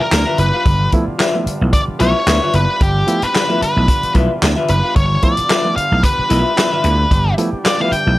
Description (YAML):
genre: funk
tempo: 112 BPM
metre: 4/4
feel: swing 56% on 16ths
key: G mixolydian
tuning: A4 = 440 Hz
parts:
  - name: octave-fuzz lead guitar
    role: melody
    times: 0.0-8.2 s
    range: G4 to G5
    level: -18 LUFS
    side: equal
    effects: distortion
  - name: overdriven tonewheel organ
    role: sustained chords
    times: 0.0-8.2 s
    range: G3 to G4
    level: -29 LUFS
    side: right 1 dB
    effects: wide subtle chorus
  - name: barky reed electric piano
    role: stabs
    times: 0.0-8.2 s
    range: G2 to E4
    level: -22 LUFS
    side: right 2 dB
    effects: overdrive
  - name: vintage slap bass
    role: bass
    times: 0.1-8.2 s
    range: F#1 to D2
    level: -16 LUFS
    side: equal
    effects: none
  - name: vintage drum kit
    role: drums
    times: 0.1-8.1 s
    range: handclaps, hi-hat, kick drum, snare drum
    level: -17 LUFS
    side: equal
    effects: none
  - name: clean electric guitar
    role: accompaniment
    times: 0.3-7.9 s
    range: F4 to F5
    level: -22 LUFS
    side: left 3 dB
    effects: spring reverb
room: light reverb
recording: none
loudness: -12 LUFS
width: side -17 dB against mid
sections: 0.0-8.2 A section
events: lead electric guitar solo 0.0-8.2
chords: 0.0 G13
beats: 0.12 | 0.66 1.20 1.74 2.27 | 2.81 3.35 3.89 4.42 | 4.96 5.50 6.04 6.57 | 7.11 7.64 8.18